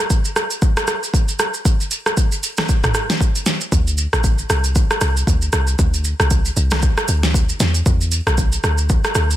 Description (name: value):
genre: amapiano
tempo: 116 BPM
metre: 4/4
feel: swing 58% on 16ths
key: unclear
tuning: A4 = 443 Hz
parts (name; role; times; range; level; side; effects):
- deep house drum kit; drums; 0.0-9.4 s; kick drum, rim click, shaker, snare drum, toms; -17 LUFS; equal; soft clipping on snare
- deep log drum bass; bass; 3.7-9.4 s; A1 to E2; -18 LUFS; equal; none
room: little or no reverb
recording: dense, heavily limited modern master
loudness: -15 LUFS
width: side -13 dB against mid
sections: 0.0-9.4 A section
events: none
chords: none